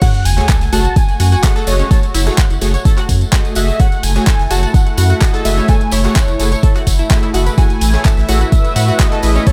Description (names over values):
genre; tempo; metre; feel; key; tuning
progressive house; 127 BPM; 4/4; straight; F# dorian; A4 = 437 Hz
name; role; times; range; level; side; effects
unison lead; melody; 0.0-9.5 s; C#5 to A5; -25 LUFS; equal; lush chorus, vintage 12-bit sampler grit, sidechain pumping, digital delay
soft synth bell; second line; 0.0-9.5 s; C#5 to A5; -31 LUFS; equal; none
lush unison pad; sustained chords; 0.0-9.5 s; A3 to C#5; -26 LUFS; equal; chorus, phaser, sidechain pumping
analog pluck; arpeggios; 0.0-9.5 s; C#4 to F#5; -26 LUFS; equal; lush chorus, cassette tape, sidechain pumping, tape echo
supersaw stab; stabs; 0.0-9.5 s; A3 to E5; -25 LUFS; equal; sidechain pumping, tape echo
deep house drum kit; drums; 0.0-9.5 s; crash cymbal, handclaps, hi-hat; -25 LUFS; equal; none
electronic kick drum; drums; 0.0-9.5 s; none; -14 LUFS; equal; high-pass filter on kick, high-pass filter on room
huge arena drum kit; drums; 0.0-9.5 s; hi-hat, snare drum; -36 LUFS; equal; none
tambourine; percussion; 0.0-9.5 s; none; -30 LUFS; equal; none
sub drop; sound effects; 0.1-1.9 s; none; -23 LUFS; equal; none
round analog bass; bass; 0.3-9.4 s; F#1 to A2; -16 LUFS; equal; sidechain pumping
room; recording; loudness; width
little or no reverb; none; -13 LUFS; mono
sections
0.0-9.5 A section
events
drop 0.0-9.5; impact 0.0-1.9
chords
0.0 F#madd9; 7.6 Amaj7